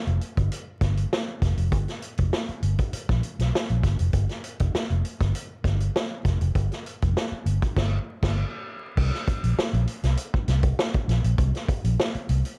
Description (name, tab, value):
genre	funk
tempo	99 BPM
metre	4/4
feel	straight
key	unclear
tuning	A4 = 440 Hz
part	vintage muted fingered electric bass	bass	0.1-12.4 s	F1 to C2	-26 LUFS	equal	none
part	vintage drum kit	drums	0.1-12.6 s	crash cymbal, hi-hat, kick drum, snare drum	-29 LUFS	equal	none
room	little or no reverb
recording	dark, warm production, vinyl crackle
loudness	-25 LUFS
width	mono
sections	0.0-9.0 A section; 9.0-12.6 B section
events	band accent 7.8-9.0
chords	none